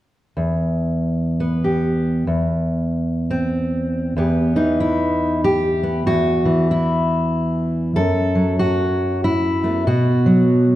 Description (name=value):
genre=folk, solo fingerstyle acoustic guitar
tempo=95 BPM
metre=3/4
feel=swing 62% on 8ths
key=E harmonic minor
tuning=A4 = 440 Hz
part: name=fingerpicked steel-string acoustic guitar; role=solo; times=0.4-10.8 s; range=E2 to A4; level=-16 LUFS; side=equal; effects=none
room=wet recital hall reverb, RT60 1.5 s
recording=dark, warm production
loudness=-17 LUFS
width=side -14 dB against mid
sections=0.4-4.2 A section; 4.2-10.8 B section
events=none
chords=0.4 Em; 2.3 C/E; 4.2 Em; 6.1 N.C.; 8.0 F#m7; 9.9 B5